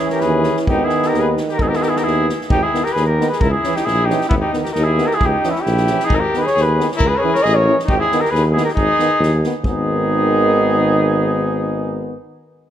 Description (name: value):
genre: balkan folk, Balkan brass band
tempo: 134 BPM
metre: 2/4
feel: swing 55% on 16ths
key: G# harmonic minor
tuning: A4 = 438 Hz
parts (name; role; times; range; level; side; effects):
- warm flugelhorn; melody; 0.0-12.2 s; E4 to D#5; -19 LUFS; right 1 dB; none
- warm trumpet; second line; 0.0-12.2 s; B3 to A#4; -23 LUFS; left 5 dB; none
- clear trombone; accompaniment; 0.0-12.2 s; B3 to C#4; -24 LUFS; left 5 dB; none
- warm euphonium; accompaniment; 0.0-12.2 s; D#3 to E3; -23 LUFS; right 7 dB; none
- unplugged drum kit; percussion; 0.1-9.9 s; kick drum, snare drum; -24 LUFS; equal; none
- mellow tuba; bass; 0.2-12.2 s; G#1 to D#2; -20 LUFS; equal; none
room: moderate recital hall reverb, RT60 1.6 s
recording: none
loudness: -14 LUFS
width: side -10 dB against mid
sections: 0.0-2.5 A section; 2.5-9.7 A section; 9.7-11.4 B section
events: speeding up 0.0-11.4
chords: 0.0 C#m; 0.7 G#m; 3.4 C#m; 4.3 G#m; 5.2 C#m; 6.1 G#m; 7.0 C#m; 7.9 G#m